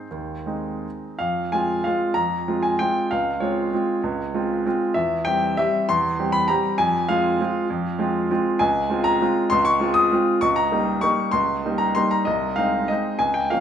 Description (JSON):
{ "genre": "classical, piano waltz", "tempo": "159-207 BPM", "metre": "3/4", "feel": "rubato", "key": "F minor, Ab major from 8.6 s", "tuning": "A4 = 440 Hz", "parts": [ { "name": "clear grand piano", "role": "solo", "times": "0.0-13.6 s", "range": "C2 to Eb6", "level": "-19 LUFS", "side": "equal", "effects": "none" } ], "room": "wet recital hall reverb, RT60 1.8 s", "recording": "none", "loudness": "-19 LUFS", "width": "side -8 dB against mid", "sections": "0.0-1.2 A section; 1.2-13.6 B section", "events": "none", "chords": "0.0 Ab; 1.2 Fm; 3.1 Dbmaj7; 5.0 C/E; 6.8 Fm; 8.6 Dbmaj7; 10.4 Eb7/Db; 12.3 Ab/C", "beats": "| 0.11 0.47 0.85 | 1.21 1.53 1.86 | 2.17 2.48 2.79 | 3.10 3.40 3.72 | 4.03 4.34 4.66 | 4.96 5.27 5.58 | 5.89 6.19 6.50 | 6.79 7.09 7.40 | 7.69 7.99 8.30 | 8.60 8.90 9.21 | 9.51 9.81 10.12 | 10.43 10.73 11.04 | 11.34 11.65 11.97 | 12.27 12.58 12.89 | 13.21 13.51" }